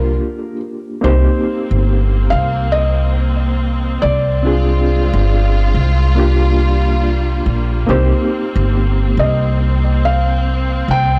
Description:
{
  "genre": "trip hop",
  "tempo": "70 BPM",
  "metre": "4/4",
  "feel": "swing 57% on 16ths",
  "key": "C minor",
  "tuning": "A4 = 438 Hz",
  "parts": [
    { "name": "felt-muted upright piano", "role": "melody", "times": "0.0-11.2 s", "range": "Bb4 to G5", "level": "-23 LUFS", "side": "equal", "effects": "vintage 12-bit sampler grit, tape echo" },
    { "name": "reed electric piano", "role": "accompaniment", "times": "0.0-11.2 s", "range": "Bb3 to Ab4", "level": "-23 LUFS", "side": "equal", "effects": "fast tremolo, harmonic tremolo, tape echo" },
    { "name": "rich studio string section", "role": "sustained chords", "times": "0.0-11.2 s", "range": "D3 to F4", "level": "-26 LUFS", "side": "equal", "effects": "none" },
    { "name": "upright bass", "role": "bass", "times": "0.0-11.2 s", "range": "G1 to C2", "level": "-17 LUFS", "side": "equal", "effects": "transformer saturation" }
  ],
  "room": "small room reverb",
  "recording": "dry, gritty hardware recording",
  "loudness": "-15 LUFS",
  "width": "mono",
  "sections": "0.0-1.0 A section; 1.0-11.2 B section",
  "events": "break 0.2-1.0",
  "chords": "0.0 Gm7/C; 1.0 Cm7; 4.5 Dm7b5; 6.2 Gm7/C; 7.9 Cm7"
}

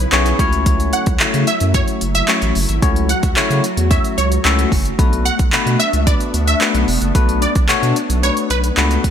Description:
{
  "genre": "dance-pop",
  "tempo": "111 BPM",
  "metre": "4/4",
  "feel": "straight",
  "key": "unclear",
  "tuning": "A4 = 440 Hz",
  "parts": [
    { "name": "glassy FM pad", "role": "sustained chords", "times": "0.0-9.1 s", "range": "C#3 to F#4", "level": "-24 LUFS", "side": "left 1 dB", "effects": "ensemble chorus, built-in reverb, sidechain pumping" },
    { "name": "saturated sub bass", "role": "bass", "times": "0.0-9.1 s", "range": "E1 to C#3", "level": "-18 LUFS", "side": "right 1 dB", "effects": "sidechain pumping" },
    { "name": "bell-like tine electric piano", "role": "accompaniment", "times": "0.1-9.0 s", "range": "A3 to E5", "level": "-21 LUFS", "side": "left 5 dB", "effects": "wide subtle chorus, sidechain pumping" },
    { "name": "deep house drum kit", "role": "drums", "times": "0.1-9.1 s", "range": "handclaps, hi-hat, kick drum", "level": "-17 LUFS", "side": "right 1 dB", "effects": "gated reverb" },
    { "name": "wide unison pluck", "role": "melody", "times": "0.9-8.6 s", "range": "B4 to F#5", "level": "-22 LUFS", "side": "right 2 dB", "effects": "phaser, sidechain pumping" }
  ],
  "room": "light reverb, digital ambience",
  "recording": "bright 1980s-style digital production",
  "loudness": "-13 LUFS",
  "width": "side -8 dB against mid",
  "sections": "0.0-9.1 A section",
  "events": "none",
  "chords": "0.4 F#m7; 5.0 Bm7"
}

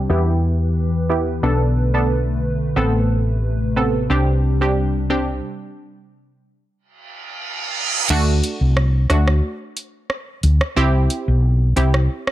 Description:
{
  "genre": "dancehall",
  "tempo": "90 BPM",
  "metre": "4/4",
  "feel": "straight",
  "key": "unclear",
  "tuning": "A4 = 440 Hz",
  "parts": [
    { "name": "hollow soft pad", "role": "sustained chords", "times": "0.0-5.4 s", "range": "C3 to B4", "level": "-25 LUFS", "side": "left 1 dB", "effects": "chorus, low-pass filter" },
    { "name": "woody fretless electric bass", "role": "bass", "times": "0.0-12.1 s", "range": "A1 to E2", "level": "-17 LUFS", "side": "equal", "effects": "none" },
    { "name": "analog pluck", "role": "accompaniment", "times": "0.1-12.1 s", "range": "A3 to A4", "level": "-22 LUFS", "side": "right 2 dB", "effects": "chorus, low-pass filter" },
    { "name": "reverse cymbal", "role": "sound effects", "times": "7.2-8.1 s", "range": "none", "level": "-22 LUFS", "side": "right 5 dB", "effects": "none" },
    { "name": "afro-pop drum kit", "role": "drums", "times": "8.1-12.3 s", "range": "crash cymbal, hi-hat, rim click", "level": "-25 LUFS", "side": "right 1 dB", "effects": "none" }
  ],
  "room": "little or no reverb",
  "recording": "dark, warm production",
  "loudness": "-16 LUFS",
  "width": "side -14 dB against mid",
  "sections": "0.0-8.1 A section; 8.1-12.3 B section",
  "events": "filter sweep 0.0-8.1; stop 5.4-8.1; reverse cymbal 7.2-8.1; kick muted 8.1-12.3",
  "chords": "0.1 Em; 1.4 Bm7; 2.8 Amadd9; 4.1 Csus2; 5.4 N.C.; 8.1 D; 10.8 C"
}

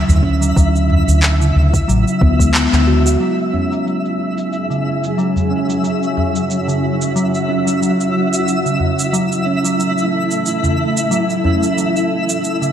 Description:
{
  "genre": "organic downtempo",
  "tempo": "91 BPM",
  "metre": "4/4",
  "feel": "swing 55% on 16ths",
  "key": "F# minor",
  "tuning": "A4 = 441 Hz",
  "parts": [
    { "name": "steel tongue drum", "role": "arpeggios", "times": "0.0-12.7 s", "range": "C#3 to F#4", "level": "-18 LUFS", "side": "equal", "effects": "low-pass filter, tape echo" },
    { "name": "woody fretless electric bass", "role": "bass", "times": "0.0-3.2 s", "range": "A1 to D2", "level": "-14 LUFS", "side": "equal", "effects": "wide subtle chorus" },
    { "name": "twinkling granular texture", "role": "texture", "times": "0.0-12.7 s", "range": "E4 to E5", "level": "-22 LUFS", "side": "equal", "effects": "built-in reverb" },
    { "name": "electronic shaker and handclaps", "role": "drums", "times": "0.1-12.7 s", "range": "none", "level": "-22 LUFS", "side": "right 1 dB", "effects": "low-pass filter on perc, low-pass filter on snare" },
    { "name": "udu", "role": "percussion", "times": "0.1-11.6 s", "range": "none", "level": "-19 LUFS", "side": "equal", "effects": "none" },
    { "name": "electronic kick drum", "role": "drums", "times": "0.2-2.5 s", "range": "none", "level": "-15 LUFS", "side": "equal", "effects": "none" },
    { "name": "granular cloud pad", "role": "sustained chords", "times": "4.5-12.7 s", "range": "F#3 to G#4", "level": "-21 LUFS", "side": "equal", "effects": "built-in reverb, sidechain pumping" }
  ],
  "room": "moderate lush hall reverb, RT60 2.5 s",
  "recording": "none",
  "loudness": "-14 LUFS",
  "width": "side -9 dB against mid",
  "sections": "0.0-3.2 A section; 3.2-12.7 B section",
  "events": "band accent 2.5-2.9; filter sweep on steel tongue drum 3.2-12.7; filter sweep on ambient pad 3.2-12.7",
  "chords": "0.0 D; 3.2 F#5; 8.5 A6"
}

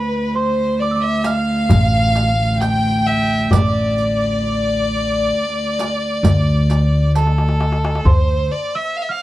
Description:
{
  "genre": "Turkish makam ensemble",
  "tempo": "132 BPM (eighths)",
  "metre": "10/8",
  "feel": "straight",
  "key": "D makam huseyni",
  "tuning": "A4 = 440 Hz",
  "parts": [
    { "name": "rich violin", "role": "melody", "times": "0.0-9.2 s", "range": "A4 to G5", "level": "-21 LUFS", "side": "left 1 dB", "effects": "tape echo" },
    { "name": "rich chamber violin section", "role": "second line", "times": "0.0-7.1 s", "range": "B4-30c to G5", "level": "-26 LUFS", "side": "left 2 dB", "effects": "none" },
    { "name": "worn celesta", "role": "second line", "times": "0.0-9.2 s", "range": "A5 to G6", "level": "-26 LUFS", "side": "right 5 dB", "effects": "none" },
    { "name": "warm cello", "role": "drone", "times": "0.0-8.1 s", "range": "D2", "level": "-22 LUFS", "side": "right 1 dB", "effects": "none" },
    { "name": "darbuka", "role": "percussion", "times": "1.2-8.6 s", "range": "none", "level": "-20 LUFS", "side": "left 1 dB", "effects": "none" },
    { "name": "riq", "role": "percussion", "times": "1.2-7.4 s", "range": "none", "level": "-24 LUFS", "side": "right 7 dB", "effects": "none" },
    { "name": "upright bass", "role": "bass", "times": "1.7-8.5 s", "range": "A1 to D2", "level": "-17 LUFS", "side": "equal", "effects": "none" }
  ],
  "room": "little or no reverb",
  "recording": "dry, close 1970s-style studio recording",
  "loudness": "-15 LUFS",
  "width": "side -15 dB against mid",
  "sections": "0.0-8.1 A section; 8.1-9.2 B section",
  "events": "drum fill 7.1-8.1",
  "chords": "none"
}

